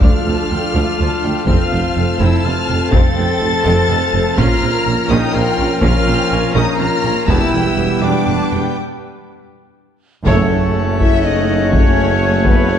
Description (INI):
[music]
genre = cinematic, epic orchestral film score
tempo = 82 BPM (dotted quarters)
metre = 6/8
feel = straight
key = unclear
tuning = A4 = 440 Hz
[part]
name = rich symphonic violin section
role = melody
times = 0.0-12.8 s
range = A4 to A6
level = -24 LUFS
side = left 3 dB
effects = none
[part]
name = rich symphonic violin section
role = second line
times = 0.0-12.8 s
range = A4 to Bb5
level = -25 LUFS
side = left 4 dB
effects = none
[part]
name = warm symphonic viola section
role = accompaniment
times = 0.0-12.8 s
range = A3 to C#5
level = -25 LUFS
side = right 1 dB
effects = none
[part]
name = clear trombone section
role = sustained chords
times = 0.0-12.8 s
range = F#2 to D4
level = -24 LUFS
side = right 2 dB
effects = none
[part]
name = pipe organ, full organ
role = sustained chords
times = 0.0-12.8 s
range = G3 to G5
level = -24 LUFS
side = left 2 dB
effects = none
[part]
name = warm French horn section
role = sustained chords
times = 0.0-12.8 s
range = A3 to A4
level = -23 LUFS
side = left 5 dB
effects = none
[part]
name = clear trumpet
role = stabs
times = 0.0-12.8 s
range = D4 to C#5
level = -24 LUFS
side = right 1 dB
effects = none
[part]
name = clear symphonic double bass section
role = bass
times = 0.0-12.8 s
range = E1 to D2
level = -22 LUFS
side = right 3 dB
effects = none
[part]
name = rich studio cello section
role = bass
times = 0.0-12.8 s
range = D2 to Bb2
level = -21 LUFS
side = right 2 dB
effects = none
[part]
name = warm tuba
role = bass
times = 0.0-12.8 s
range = E1 to D2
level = -23 LUFS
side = right 2 dB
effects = none
[part]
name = taiko ensemble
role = drums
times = 0.0-7.7, 10.3-12.8 s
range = none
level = -16 LUFS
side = left 1 dB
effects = none
[part]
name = concert flute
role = second line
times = 10.3-12.8 s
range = A4 to E5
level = -25 LUFS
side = left 4 dB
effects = none
[part]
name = timpani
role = percussion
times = 10.3-11.0 s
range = F#2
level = -24 LUFS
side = right 2 dB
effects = none
[sound]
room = moderate scoring stage reverb, RT60 2.0 s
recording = dark, warm production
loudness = -12 LUFS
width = side -9 dB against mid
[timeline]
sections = 0.0-10.3 A section; 10.3-12.8 B section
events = break 8.8-10.3; drum fill 9.5-10.3; band accent 10.3-10.8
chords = 0.0 Dm; 1.5 F; 4.4 Bbm; 7.3 Em; 8.8 N.C.; 10.3 F#m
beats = | 0.02 0.75 | 1.48 2.21 | 2.93 3.66 | 4.38 5.11 | 5.83 6.56 | 7.29 8.02 | 8.77 9.52 | 10.27 11.00 | 11.73 12.46